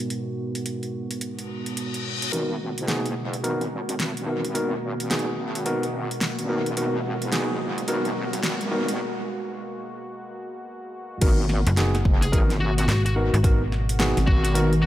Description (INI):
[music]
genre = glitch hop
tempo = 108 BPM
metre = 4/4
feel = swing 62% on 16ths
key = G# minor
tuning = A4 = 441 Hz
[part]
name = warm analog pad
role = sustained chords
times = 0.0-14.9 s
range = B2 to F#4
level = -32 LUFS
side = right 1 dB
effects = chorus, vintage 12-bit sampler grit, sidechain pumping
[part]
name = overdriven tine electric piano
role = stabs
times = 0.0-14.7 s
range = G#2 to A#4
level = -28 LUFS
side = equal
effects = sidechain pumping, low-pass filter, analog delay
[part]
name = pop drum kit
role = drums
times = 0.0-14.8 s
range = crash cymbal, hi-hat, snare drum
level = -30 LUFS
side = equal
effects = studio reverb, analog delay
[part]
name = reverse cymbal and riser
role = sound effects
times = 1.5-9.0 s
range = none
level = -35 LUFS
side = left 1 dB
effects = none
[part]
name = wobble bass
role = bass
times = 2.3-14.9 s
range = F#1 to G#1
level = -27 LUFS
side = equal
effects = chorus, overdrive, high-pass filter
[part]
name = electronic kick drum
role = drums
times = 11.2-14.4 s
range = none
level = -20 LUFS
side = equal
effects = studio reverb
[part]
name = slap-like FM bass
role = bass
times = 11.7-14.1 s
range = F#1 to G#1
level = -22 LUFS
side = equal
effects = none
[part]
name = fuzz lead guitar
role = melody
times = 12.2-14.9 s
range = F#4 to G#4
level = -30 LUFS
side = left 2 dB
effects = distortion, analog delay
[sound]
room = moderate plate reverb, RT60 2.7 s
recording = echo-heavy mix, high-pass filter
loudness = -22 LUFS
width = side -13 dB against mid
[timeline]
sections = 0.0-2.3 A section; 2.3-11.2 B section; 11.2-14.9 C section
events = filter sweep on tine electric piano 0.0-2.3, 2.3-11.2; filter sweep on analog synth pad 0.0-2.3; reverse cymbal 1.5-2.3; build-up 2.3-11.2; riser 2.3-9.0; filter sweep 2.3-11.2; break 9.0-11.2; drop 11.2-14.9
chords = 0.0 G#m9